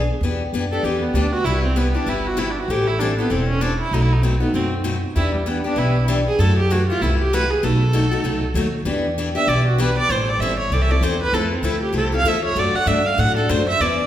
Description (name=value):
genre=acoustic string swing (jazz manouche)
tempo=194 BPM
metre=4/4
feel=swing 58% on 8ths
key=E minor, A minor from 10.1 s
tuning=A4 = 440 Hz
part: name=rich viola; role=melody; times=0.0-14.1 s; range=G3 to F#5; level=-22 LUFS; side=right 2 dB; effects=none
part: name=upright bass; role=bass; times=0.0-14.1 s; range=E1 to A2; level=-21 LUFS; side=equal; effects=none
part: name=picked steel-string acoustic guitar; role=accompaniment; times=0.2-14.0 s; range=B2 to A4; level=-22 LUFS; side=left 3 dB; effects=none
room=wet recital hall reverb, RT60 1.5 s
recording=recorded in a church or concert hall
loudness=-17 LUFS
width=side -12 dB against mid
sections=0.2-10.1 A section; 10.1-14.1 A section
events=viola solo 0.2-14.1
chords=0.2 Em7; 1.4 Cmaj7; 2.7 Am7; 3.9 B7; 5.2 Em7; 6.4 F#m7b5; 7.6 B7; 8.9 Em7; 10.1 Am7; 11.3 Fmaj7; 12.6 D7/F#